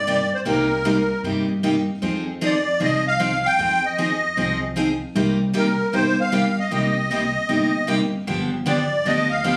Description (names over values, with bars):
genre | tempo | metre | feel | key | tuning
acoustic string swing (jazz manouche) | 154 BPM | 4/4 | swing 63% on 8ths | C minor | A4 = 441 Hz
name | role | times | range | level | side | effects
musette accordion | melody | 0.0-9.6 s | Bb4 to G5 | -23 LUFS | equal | none
upright bass | bass | 0.0-9.6 s | G1 to G2 | -30 LUFS | equal | none
picked steel-string acoustic guitar | accompaniment | 0.1-9.6 s | C3 to Ab4 | -24 LUFS | equal | none
room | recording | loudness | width
light reverb | recorded on a phone in the room, studio reverb | -21 LUFS | mono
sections
0.0-9.6 A section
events
none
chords
0.0 Cm7; 2.0 Fm7; 5.2 Cm7; 8.3 G7